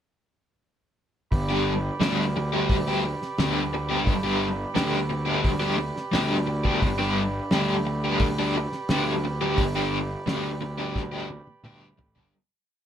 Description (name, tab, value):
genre	psychedelic rock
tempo	87 BPM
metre	4/4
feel	straight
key	G major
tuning	A4 = 439 Hz
part	combo organ	sustained chords	1.3-12.3 s	G4 to B5	-33 LUFS	right 4 dB	none
part	fuzz picked electric bass	bass	1.3-12.3 s	G1 to D2	-29 LUFS	equal	overdrive
part	cloth-damped thuddy drum kit	drums	1.3-12.3 s	hi-hat, kick drum, snare drum, toms	-27 LUFS	equal	none
part	overdriven semi-hollow guitar	riff	1.5-12.3 s	G3 to G4	-25 LUFS	left 1 dB	tremolo
room	light reverb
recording	band playing live in one room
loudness	-23 LUFS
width	side -9 dB against mid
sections	1.3-12.3 groove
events	fade-out 9.6-12.3; drum fill 11.0-12.3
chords	1.3 G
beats	| 1.32 2.01 2.70 3.39 | 4.08 4.77 5.45 6.14 | 6.83 7.52 8.21 8.89 | 9.58 10.27 10.95 11.64